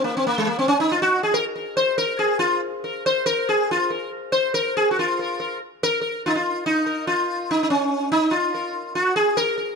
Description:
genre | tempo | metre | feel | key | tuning
indian classical | 142 BPM | 4/4 | straight | Bb raga darbari | A4 = 438 Hz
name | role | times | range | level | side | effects
sitar | solo | 0.0-9.8 s | Ab3 to C5 | -19 LUFS | equal | none
room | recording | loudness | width
light reverb | close, detailed microphones | -19 LUFS | side -5 dB against mid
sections
0.0-5.0 A section; 5.0-9.8 B section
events
speeding up 0.0-9.8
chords
none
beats
0.27 0.70 1.13 | 1.55 1.98 2.41 2.84 | 3.26 3.69 4.11 4.54 | 4.96 5.38 5.81 6.23 | 6.65 7.07 7.49 7.91 | 8.32 8.74 9.16 9.57

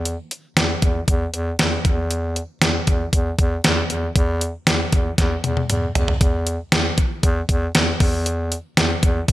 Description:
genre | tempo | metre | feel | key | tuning
1980s-style pop | 117 BPM | 4/4 | straight | unclear | A4 = 442 Hz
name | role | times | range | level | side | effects
clear bass clarinet | bass | 0.0-9.3 s | E2 | -23 LUFS | equal | none
clean 12-bit digital drum machine | drums | 0.1-9.3 s | hi-hat, kick drum, snare drum, toms | -18 LUFS | equal | gated reverb
room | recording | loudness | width
light reverb | bright 1980s-style digital production | -18 LUFS | side -15 dB against mid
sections
0.0-9.3 A section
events
drum fill 5.2-6.2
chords
none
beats
| 0.05 0.57 1.08 1.59 | 2.10 2.62 3.13 3.64 | 4.16 4.67 5.18 5.69 | 6.21 6.72 7.23 7.75 | 8.26 8.77 9.28

